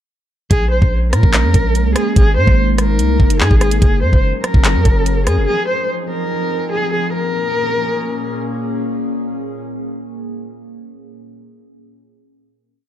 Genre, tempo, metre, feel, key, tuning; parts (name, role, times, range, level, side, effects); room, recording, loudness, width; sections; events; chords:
hip hop, drill; 145 BPM; 4/4; half-time; Bb minor; A4 = 439 Hz
dark cello; melody; 0.5-8.3 s; Ab4 to C5; -19 LUFS; equal; low-pass filter
warbly tape-like pad; sustained chords; 1.0-11.1 s; Bb2 to Bb4; -22 LUFS; left 1 dB; chorus, built-in reverb, phaser
long sustained 808-style bass; bass; 0.5-5.5 s; Gb1 to Bb2; -15 LUFS; equal
drill drum kit; drums; 0.5-5.4 s; handclaps, hi-hat, kick drum, rim click; -13 LUFS; equal
digital ambience; dark, warm production; -13 LUFS; side -11 dB against mid
0.5-7.1 hook; 7.1-10.4 final chord
0.5 Bbm7; 2.2 Absus2; 3.8 Gbadd9; 5.5 Fm7; 7.1 Bbm7